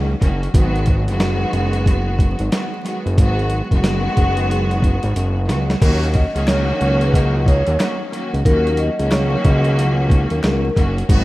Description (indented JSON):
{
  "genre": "hip hop, boom-bap hip-hop",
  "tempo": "91 BPM",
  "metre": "4/4",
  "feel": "swing 63% on 16ths",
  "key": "Eb minor",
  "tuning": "A4 = 440 Hz",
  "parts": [
    { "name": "clear studio string section", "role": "accompaniment", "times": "0.0-11.2 s", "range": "Eb3 to Gb4", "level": "-22 LUFS", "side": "equal", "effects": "cassette tape, high-pass filter, low-pass filter" },
    { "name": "fat analog bass", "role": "bass", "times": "0.0-11.2 s", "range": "Gb1 to Eb2", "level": "-18 LUFS", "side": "equal", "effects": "none" },
    { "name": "boom bap sampler-style drum kit", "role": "drums", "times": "0.2-11.2 s", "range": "crash cymbal, hi-hat, kick drum, snare drum", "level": "-18 LUFS", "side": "equal", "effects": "none" },
    { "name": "brilliant trumpet section", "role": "stabs", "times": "5.8-11.2 s", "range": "Cb4 to Bb4", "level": "-32 LUFS", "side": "equal", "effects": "high-pass filter, low-pass filter, ping-pong delay" },
    { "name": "vibraphone with soft mallets", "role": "melody", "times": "6.1-10.7 s", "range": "Bb4 to Eb5", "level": "-23 LUFS", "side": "equal", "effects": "high-pass filter, low-pass filter" },
    { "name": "finger snaps", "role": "percussion", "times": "6.5-10.6 s", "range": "none", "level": "-35 LUFS", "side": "left 4 dB", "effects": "none" }
  ],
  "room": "small room ambience",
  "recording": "rough home demo mix, vinyl crackle",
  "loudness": "-15 LUFS",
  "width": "side -18 dB against mid",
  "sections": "0.0-5.8 A section; 5.8-11.2 B section",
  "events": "drum fill 5.2-5.8",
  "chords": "0.0 Ebm7; 0.5 Abm7; 5.8 Ebm7"
}